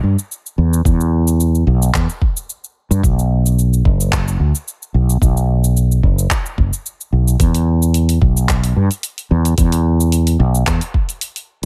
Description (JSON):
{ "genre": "sunset chillout", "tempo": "110 BPM", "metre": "4/4", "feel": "swing 53% on 16ths", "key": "E minor", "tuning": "A4 = 439 Hz", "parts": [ { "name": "fretless electric bass", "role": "bass", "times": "0.0-10.8 s", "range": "F#1 to G2", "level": "-16 LUFS", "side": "equal", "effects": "none" }, { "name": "smooth R&B drum kit", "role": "drums", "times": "0.2-11.7 s", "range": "cabasa, handclaps, hi-hat", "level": "-25 LUFS", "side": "equal", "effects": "studio reverb" }, { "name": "electronic kick drum", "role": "drums", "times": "0.9-11.1 s", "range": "none", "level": "-18 LUFS", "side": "equal", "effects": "studio reverb" } ], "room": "digital ambience", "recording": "none", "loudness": "-16 LUFS", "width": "mono", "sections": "0.0-11.7 A section", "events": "none", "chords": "none" }